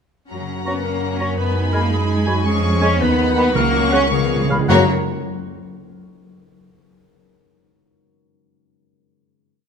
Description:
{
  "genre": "classical, dramatic, fast romantic movement for symphony orchestra",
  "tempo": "110 BPM (dotted quarters)",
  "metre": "6/8",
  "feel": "straight",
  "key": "F# major",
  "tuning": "A4 = 442 Hz",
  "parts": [
    { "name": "rich symphonic violin section", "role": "melody", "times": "0.3-4.9 s", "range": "C#5 to C#6", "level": "-27 LUFS", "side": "left 2 dB", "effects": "none" },
    { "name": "rich symphonic violin section", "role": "second line", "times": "0.3-4.9 s", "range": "C#5 to G#5", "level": "-29 LUFS", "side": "left 4 dB", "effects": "none" },
    { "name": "warm clarinet", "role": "second line", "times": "0.3-4.8 s", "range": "F#4 to C#5", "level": "-26 LUFS", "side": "equal", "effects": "none" },
    { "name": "rich symphonic viola section", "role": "accompaniment", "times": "0.3-4.9 s", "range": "A#3 to D#4", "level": "-28 LUFS", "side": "right 1 dB", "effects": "none" },
    { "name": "mellow French horn section", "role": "sustained chords", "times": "0.3-4.8 s", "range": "E#3 to D#4", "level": "-27 LUFS", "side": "left 5 dB", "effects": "none" },
    { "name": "concert harp", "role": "arpeggios", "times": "0.3-5.8 s", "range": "E#2 to B5", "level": "-26 LUFS", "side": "left 9 dB", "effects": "none" },
    { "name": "rich symphonic cello section", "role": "bass", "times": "0.3-4.9 s", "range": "F#3 to C#4", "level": "-23 LUFS", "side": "right 2 dB", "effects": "none" },
    { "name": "rich symphonic double bass section", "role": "bass", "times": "0.3-4.9 s", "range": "C#2 to F#2", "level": "-23 LUFS", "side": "right 3 dB", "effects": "none" },
    { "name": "clear oboe", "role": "second line", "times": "0.7-4.8 s", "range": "E#5 to A#5", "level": "-30 LUFS", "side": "right 2 dB", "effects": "none" },
    { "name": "concert flute", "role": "second line", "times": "0.7-4.9 s", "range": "A#5 to C#6", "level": "-27 LUFS", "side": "left 4 dB", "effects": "none" },
    { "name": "dark bassoon", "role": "accompaniment", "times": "0.7-4.8 s", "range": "C#3 to G#3", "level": "-28 LUFS", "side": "right 2 dB", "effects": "none" },
    { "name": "timpani", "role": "percussion", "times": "3.6-4.9 s", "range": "F#2 to C#3", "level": "-23 LUFS", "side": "right 2 dB", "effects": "none" }
  ],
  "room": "moderate recital hall reverb, RT60 1.8 s",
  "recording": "none",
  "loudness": "-15 LUFS",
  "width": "side -6 dB against mid",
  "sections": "0.3-4.7 A section; 4.7-5.8 final chord",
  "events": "timpani fill 4.1-4.7",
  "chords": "0.3 F#; 1.4 G#m7/F#; 2.5 C#/E#; 3.0 B/D#; 3.6 F#/C#; 4.1 C#7; 4.7 F#"
}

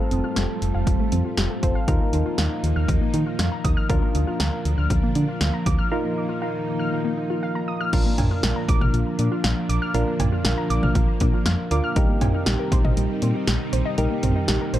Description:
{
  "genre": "synth-pop",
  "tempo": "119 BPM",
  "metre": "4/4",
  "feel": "straight",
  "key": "Bb major",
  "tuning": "A4 = 438 Hz",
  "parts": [
    { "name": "soft electric-piano-like synth keys", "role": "accompaniment", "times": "0.0-14.8 s", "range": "C4 to Bb4", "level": "-29 LUFS", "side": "equal", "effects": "chorus, tape echo" },
    { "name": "string machine, cellos", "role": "sustained chords", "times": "0.0-14.8 s", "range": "F3 to F4", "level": "-28 LUFS", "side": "equal", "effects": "ensemble chorus" },
    { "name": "warbly dusty pluck", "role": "arpeggios", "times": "0.0-14.8 s", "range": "F3 to F6", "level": "-29 LUFS", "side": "equal", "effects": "chorus, tape echo" },
    { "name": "solid FM bass", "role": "bass", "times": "0.1-14.8 s", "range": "F1 to Eb3", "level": "-23 LUFS", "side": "equal", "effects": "none" },
    { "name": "punchy analog drum machine", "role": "drums", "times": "0.1-14.8 s", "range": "cowbell, crash cymbal, hi-hat, kick drum, snare drum, toms", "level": "-23 LUFS", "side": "equal", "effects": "none" }
  ],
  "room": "light reverb",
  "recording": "echo-heavy mix",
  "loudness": "-20 LUFS",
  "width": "side -13 dB against mid",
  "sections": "0.0-7.9 A section; 7.9-14.8 B section",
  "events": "break 5.9-7.9",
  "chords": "0.0 Fadd9; 1.9 Ebsus2; 3.9 Bb/D; 5.9 Ebsus2; 7.9 Bb; 12.0 Eb6/Bb"
}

